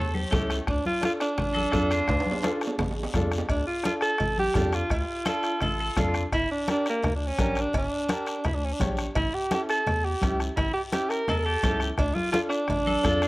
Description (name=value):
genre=latin, cumbia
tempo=170 BPM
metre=4/4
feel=straight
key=D harmonic minor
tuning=A4 = 435 Hz
part: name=clear alto saxophone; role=melody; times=0.0-13.3 s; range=Bb3 to C#5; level=-27 LUFS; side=right 1 dB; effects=cassette tape
part: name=clean electric guitar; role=second line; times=0.0-2.6, 5.3-6.2, 11.3-13.3 s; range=F4 to A4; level=-31 LUFS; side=equal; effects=cassette tape
part: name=round analog bass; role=bass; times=0.0-13.3 s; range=G1 to F2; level=-30 LUFS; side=equal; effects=none
part: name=congas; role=percussion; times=0.1-13.2 s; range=none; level=-31 LUFS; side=left 1 dB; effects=none
part: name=clear upright piano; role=accompaniment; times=0.3-13.3 s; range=C#4 to C#5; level=-32 LUFS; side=equal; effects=cassette tape
part: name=bombo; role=percussion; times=0.3-13.3 s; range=none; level=-31 LUFS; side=left 1 dB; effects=none
part: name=guiro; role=percussion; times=0.3-13.3 s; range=none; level=-42 LUFS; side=left 3 dB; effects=none
part: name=timbales and cowbell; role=percussion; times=0.3-13.2 s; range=none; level=-36 LUFS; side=right 2 dB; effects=none
room=light reverb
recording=home recording on cassette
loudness=-24 LUFS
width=side -20 dB against mid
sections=0.0-3.5 A section; 3.5-13.3 A section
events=drum fill 2.1-3.5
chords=0.0 A7; 0.7 Dm; 6.3 Gm; 9.2 A7; 12.0 Dm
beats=0.32 | 0.67 1.02 1.38 1.73 | 2.09 2.44 2.79 3.15 | 3.50 3.85 4.21 4.56 | 4.91 5.27 5.62 5.97 | 6.33 6.68 7.03 7.39 | 7.74 8.09 8.45 8.80 | 9.15 9.51 9.86 10.22 | 10.57 10.93 11.28 11.63 | 11.99 12.34 12.70 13.05